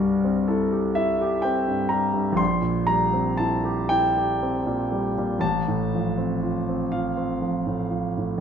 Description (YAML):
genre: classical, romantic nocturne for solo piano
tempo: 38-42 BPM (dotted quarters)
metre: 6/8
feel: rubato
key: unclear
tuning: A4 = 440 Hz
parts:
  - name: warm concert grand piano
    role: solo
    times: 0.0-8.4 s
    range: A1 to C6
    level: -21 LUFS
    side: equal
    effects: none
room: wet large studio reverb, RT60 1.4 s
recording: none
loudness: -21 LUFS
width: side -7 dB against mid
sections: 0.0-8.4 A section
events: none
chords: 0.0 C; 5.4 F/A